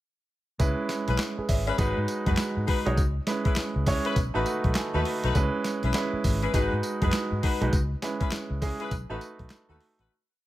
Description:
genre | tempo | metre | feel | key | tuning
R&B, new jack swing | 101 BPM | 4/4 | swing 62% on 16ths | C# minor | A4 = 440 Hz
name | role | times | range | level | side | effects
dark grand piano | accompaniment | 0.6-10.1 s | G#3 to A5 | -29 LUFS | right 2 dB | none
vintage muted fingered electric bass | bass | 0.6-10.1 s | G#1 to G#2 | -29 LUFS | equal | none
boom bap sampler-style drum kit | drums | 0.6-10.1 s | handclaps, hi-hat, kick drum, snare drum, tambourine | -28 LUFS | equal | none
mellow horn section | stabs | 1.1-10.1 s | C#4 to B4 | -34 LUFS | left 6 dB | none
room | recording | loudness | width
little or no reverb | none | -24 LUFS | side -15 dB against mid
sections
0.6-10.1 chorus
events
grand piano fill 4.2-5.3; fade-out 7.7-10.1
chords
0.6 C#m7; 1.8 G#m7; 3.0 C#m7; 4.2 B7; 5.3 C#m7; 6.5 G#m7; 7.7 C#m7; 8.9 B7

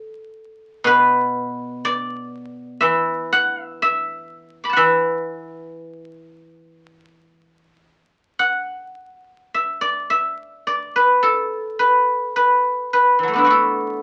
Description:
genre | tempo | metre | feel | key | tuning
chinese traditional, Chinese solo plucked strings | 52-63 BPM | 4/4 | rubato | E shang mode | A4 = 439 Hz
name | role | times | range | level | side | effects
guzheng | solo | 0.0-14.0 s | B2 to D6 | -19 LUFS | equal | none
room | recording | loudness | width
moderate small room reverb, RT60 0.6 s | very old 78 rpm record, vinyl crackle | -19 LUFS | mono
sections
0.0-9.0 A section; 9.0-14.0 B section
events
none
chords
none

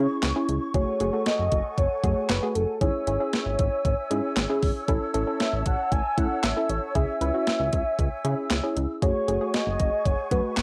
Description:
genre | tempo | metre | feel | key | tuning
synth-pop | 116 BPM | 4/4 | straight | C# minor | A4 = 440 Hz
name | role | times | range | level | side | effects
warm velvety synth lead | melody | 0.0-10.6 s | A4 to G#5 | -30 LUFS | equal | chorus, analog delay
soft round pluck | accompaniment | 0.0-10.5 s | A3 to B4 | -31 LUFS | equal | chorus, cassette tape
breathy large flute ensemble | sustained chords | 0.0-10.6 s | E4 to E6 | -36 LUFS | equal | cassette tape
chorused synth bass | bass | 0.0-10.6 s | F#1 to C#3 | -31 LUFS | equal | tube saturation
clean 12-bit digital drum machine | drums | 0.2-10.6 s | handclaps, hi-hat, kick drum, snare drum | -29 LUFS | equal | overdrive, cassette tape
room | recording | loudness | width
moderate studio reverb, RT60 0.6 s | home recording on cassette | -25 LUFS | mono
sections
0.0-10.6 A section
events
none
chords
0.0 C#m; 0.7 F#madd9; 2.8 C#m/G#; 4.9 A; 7.0 C#m; 9.0 F#madd9

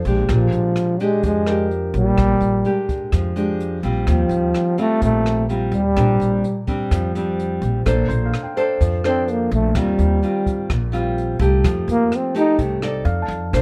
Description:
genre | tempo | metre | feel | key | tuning
bossa nova | 127 BPM | 4/4 | straight | Bb major | A4 = 440 Hz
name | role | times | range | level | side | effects
nylon-string guitar | accompaniment | 0.0-13.6 s | Bb2 to D5 | -25 LUFS | equal | none
upright bass | bass | 0.1-13.6 s | Bb1 to F2 | -23 LUFS | equal | none
jazz brush drum kit | drums | 0.1-13.6 s | hi-hat, kick drum, rim click | -29 LUFS | equal | none
breathy trombone | melody | 0.3-12.6 s | F3 to Eb4 | -21 LUFS | equal | none
warm grand piano | accompaniment | 1.5-4.1, 8.1-9.9, 13.0-13.6 s | Bb4 to A5 | -34 LUFS | equal | none
room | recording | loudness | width
light reverb | none | -19 LUFS | mono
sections
0.0-7.9 A section; 7.9-13.6 B section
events
trombone solo 7.9-13.6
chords
0.3 Bb13; 4.1 Eb69; 6.0 Bb69; 7.9 Bbmaj9; 9.7 Eb69; 11.6 F9; 13.1 F6

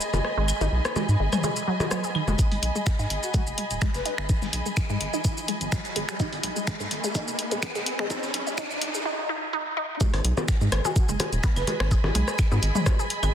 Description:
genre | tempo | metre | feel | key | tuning
minimal techno | 126 BPM | 4/4 | swing 54% on 16ths | G# minor | A4 = 440 Hz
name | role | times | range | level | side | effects
punchy analog drum machine | drums | 0.0-13.3 s | finger snaps, hi-hat, shaker | -32 LUFS | equal | soft clipping on snare
dark chamber string section | texture | 0.0-13.3 s | G#4 to B5 | -33 LUFS | right 1 dB | sidechain pumping
resonant blip pluck | riff | 0.1-13.3 s | D#3 to G#4 | -31 LUFS | right 1 dB | phaser, sidechain pumping, tape echo
rubbery square bass | bass | 0.1-13.3 s | D#1 to G#2 | -26 LUFS | equal | sidechain pumping
minimal click drum kit | percussion | 0.1-2.4, 10.0-13.3 s | claves, percussion blips, rim click, toms | -29 LUFS | left 2 dB | soft clipping on snare
dusty soul sampler-style drum kit | drums | 2.4-13.2 s | hi-hat, shaker, snare drum | -41 LUFS | right 1 dB | none
electronic kick drum | drums | 2.4-13.0 s | none | -24 LUFS | equal | overdrive
riser | sound effects | 3.7-9.1 s | none | -36 LUFS | right 1 dB | none
breathy flute-like synth lead | melody | 3.2-4.1, 10.8-11.8 s | F#4 to B4 | -36 LUFS | equal | tremolo, wide subtle chorus, tape echo
room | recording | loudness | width
moderate lush hall reverb, RT60 1.9 s, digital ambience | dense, heavily limited modern master, high-pass filter | -23 LUFS | side -9 dB against mid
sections
0.0-2.4 A section; 2.4-10.0 B section; 10.0-13.3 C section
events
filter sweep on synth pluck 0.0-2.4, 2.4-10.0; build-up 2.4-10.0; filter sweep 2.4-10.0; riser 3.7-9.1; drop 10.0-13.3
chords
0.0 G#m7; 2.4 G#m

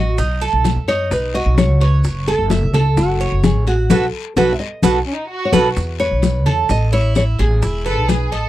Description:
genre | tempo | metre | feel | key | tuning
latin, Cuban son and guajira | 129 BPM | 4/4 | straight | E major | A4 = 440 Hz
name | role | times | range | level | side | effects
nylon-string guitar | melody | 0.0-8.1 s | F#4 to E5 | -21 LUFS | left 2 dB | none
Cuban tres | arpeggios | 0.0-8.5 s | D#4 to E5 | -20 LUFS | right 4 dB | none
upright bass | bass | 0.0-8.5 s | E1 to F#2 | -17 LUFS | equal | none
bongos | percussion | 0.2-8.3 s | none | -22 LUFS | left 5 dB | none
congas | percussion | 0.2-8.5 s | none | -20 LUFS | left 4 dB | none
guiro | percussion | 0.2-8.5 s | none | -34 LUFS | left 14 dB | none
maracas | percussion | 0.2-8.5 s | none | -35 LUFS | right 9 dB | none
warm studio violin section | second line | 5.1-8.5 s | C#4 to A4 | -23 LUFS | equal | none
room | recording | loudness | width
light reverb | dry, close 1970s-style studio recording | -14 LUFS | side -14 dB against mid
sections
0.0-5.8 A section; 5.8-8.5 B section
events
band accent 3.9-5.8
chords
0.2 B7; 2.0 F#m; 3.9 B7; 5.8 E5; 6.7 A5; 7.6 E

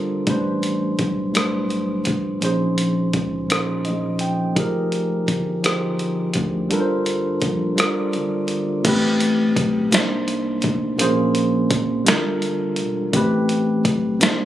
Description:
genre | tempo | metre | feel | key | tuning
slow six-eight R&B | 56 BPM (dotted quarters) | 6/8 | straight | unclear | A4 = 440 Hz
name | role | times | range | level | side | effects
tine electric piano | accompaniment | 0.0-14.4 s | A2 to G5 | -20 LUFS | equal | none
rubbery square bass | bass | 0.0-14.4 s | E1 to D2 | -28 LUFS | left 1 dB | none
dusty soul sampler-style drum kit | drums | 0.3-14.4 s | crash cymbal, hi-hat, kick drum, rim click, snare drum | -21 LUFS | equal | none
room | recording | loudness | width
light reverb, digital ambience | recorded on a phone in the room, club reverb, compression | -18 LUFS | side -12 dB against mid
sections
0.0-8.8 A section; 8.8-14.4 B section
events
tine electric piano fill 3.5-4.6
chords
0.3 Am11; 2.4 Bbm11; 4.6 Fm11; 6.7 Gm11; 8.8 Am9; 9.9 Cm9; 11.0 Bbm9; 12.1 Gm9; 13.1 Am9

